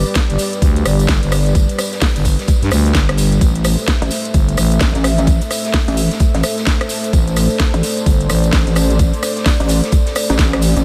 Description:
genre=bass house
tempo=129 BPM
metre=4/4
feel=swing 61% on 16ths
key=A minor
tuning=A4 = 440 Hz
part: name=dark analog pad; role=sustained chords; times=0.0-10.8 s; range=G3 to E5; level=-24 LUFS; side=equal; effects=chorus, sidechain pumping
part: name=growling FM bass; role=bass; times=0.0-8.5 s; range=G1 to G2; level=-17 LUFS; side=equal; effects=tube saturation, sidechain pumping
part: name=big rock drum kit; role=drums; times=0.1-10.8 s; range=hi-hat, snare drum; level=-35 LUFS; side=equal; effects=none
part: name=tambourine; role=percussion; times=0.1-10.8 s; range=none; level=-30 LUFS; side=equal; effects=none
part: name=electronic kick drum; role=drums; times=0.2-10.5 s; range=none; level=-17 LUFS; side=equal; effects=overdrive
part: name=garage drum kit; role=drums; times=0.2-10.8 s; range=hi-hat, rim click, snare drum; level=-24 LUFS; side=equal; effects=none
part: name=pulsing pluck wobble bass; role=bass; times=4.0-10.8 s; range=A1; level=-17 LUFS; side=equal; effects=chorus, sidechain pumping
room=light reverb, studio ambience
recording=none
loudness=-15 LUFS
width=mono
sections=0.0-10.8 A section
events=none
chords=0.0 G; 3.4 Am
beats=0.16 0.62 1.09 | 1.55 2.02 2.48 2.95 | 3.41 3.88 4.34 4.81 | 5.27 5.74 6.20 6.67 | 7.13 7.60 8.06 8.53 | 8.99 9.46 9.92 10.39

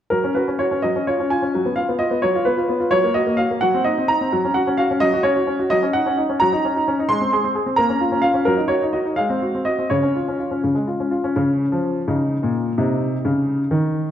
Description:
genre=classical-period piano sonatina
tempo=86 BPM (dotted quarters)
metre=6/8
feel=rubato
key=F# major, Db major from 5.7 s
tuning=A4 = 442 Hz
part: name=clear grand piano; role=solo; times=0.1-14.1 s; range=Bb2 to C6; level=-17 LUFS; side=equal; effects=none
room=wet recital hall reverb, RT60 1.7 s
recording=dark, warm production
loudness=-17 LUFS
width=side -10 dB against mid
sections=0.1-11.4 A section; 11.4-14.1 B section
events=none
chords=0.1 F#5; 0.8 C#/F#; 1.5 C#9; 2.9 F#; 3.6 D#m6/F#; 4.3 F#5; 5.7 Ebm7/Gb; 7.1 Ab; 7.8 Bbm; 8.5 Ebm/Gb; 9.2 Ab7; 9.9 Db; 12.1 Eb5/Db; 12.8 Cm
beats=| 0.12 0.83 | 1.53 2.22 | 2.92 3.62 | 4.32 5.02 | 5.71 6.40 | 7.09 7.78 | 8.47 9.18 | 9.90 10.63 | 11.36 12.07 | 12.78 13.48

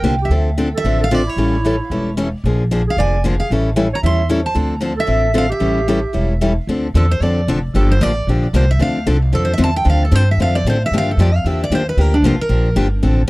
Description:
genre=acoustic string swing (jazz manouche)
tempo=226 BPM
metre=4/4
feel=swing 56% on 8ths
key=D minor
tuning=A4 = 440 Hz
part: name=picked steel-string acoustic guitar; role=melody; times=0.0-12.8 s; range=D4 to B#5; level=-21 LUFS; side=right 1 dB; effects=tape echo
part: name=warm clarinet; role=second line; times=0.0-6.4 s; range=E4 to E5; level=-23 LUFS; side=right 4 dB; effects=none
part: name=picked steel-string acoustic guitar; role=accompaniment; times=0.0-13.3 s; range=D3 to A4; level=-19 LUFS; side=left 2 dB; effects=none
part: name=upright bass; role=bass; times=0.0-13.3 s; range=E1 to A2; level=-16 LUFS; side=equal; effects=none
room=little or no reverb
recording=dry, close 1970s-style studio recording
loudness=-14 LUFS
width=side -20 dB against mid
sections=0.0-6.7 A section; 6.7-13.3 B section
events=steel-string acoustic guitar solo 6.7-13.3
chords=0.3 Dm7; 1.4 A7; 2.4 Bb7; 3.5 A7#9; 4.6 Dm7; 5.6 A7; 6.7 Dm7; 7.7 Gm7; 8.8 Dm7; 10.9 Gm7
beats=0.04 | 0.30 0.57 0.84 1.10 | 1.37 1.64 1.90 2.17 | 2.43 2.70 2.97 3.23 | 3.50 3.76 4.03 4.29 | 4.56 4.83 5.09 5.36 | 5.62 5.89 6.15 6.42 | 6.68 6.95 7.21 7.48 | 7.74 8.01 8.27 8.54 | 8.80 9.06 9.33 9.60 | 9.86 10.12 10.39 10.65 | 10.92 11.18 11.45 11.71 | 11.98 12.24 12.51 12.77 | 13.03 13.30

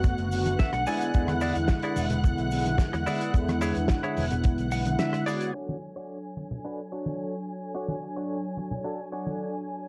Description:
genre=nu-disco, nu disco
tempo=109 BPM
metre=4/4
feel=straight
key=unclear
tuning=A4 = 440 Hz
part: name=mellow synth brass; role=accompaniment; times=0.0-9.9 s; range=D3 to A4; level=-33 LUFS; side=equal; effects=chorus, cassette tape, sidechain pumping, tape echo
part: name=warm studio violin section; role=sustained chords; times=0.0-9.9 s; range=F#5 to G#6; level=-38 LUFS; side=equal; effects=sidechain pumping
part: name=direct-recorded clean electric guitar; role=riff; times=0.0-9.5 s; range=D4 to G#5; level=-36 LUFS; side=equal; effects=lush chorus, low-pass filter, tape echo
part: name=fingered electric bass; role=bass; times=0.0-5.0 s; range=E1 to E2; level=-33 LUFS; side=equal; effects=sidechain pumping
part: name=damped 70s drum kit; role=drums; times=0.0-5.5 s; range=hi-hat, rim click, snare drum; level=-37 LUFS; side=equal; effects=cassette tape
part: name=kick drum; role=drums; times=0.0-4.6 s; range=none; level=-26 LUFS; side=equal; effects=cassette tape
part: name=cabasa and congas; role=percussion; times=0.0-9.9 s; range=none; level=-38 LUFS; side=equal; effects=none
room=light reverb, small room ambience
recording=home recording on cassette, low-pass filter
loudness=-28 LUFS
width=mono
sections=0.0-5.5 A section; 5.5-9.9 B section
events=clean electric guitar fill 0.3-1.1, 4.4-5.5; filter sweep 5.5-9.9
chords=0.0 Bm7; 0.9 E7; 5.5 Dmaj7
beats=0.04 0.59 | 1.14 1.69 2.24 2.79 | 3.35 3.90 4.45 5.00 | 5.55 6.10 6.65 7.20 | 7.75 8.30 8.85 9.40

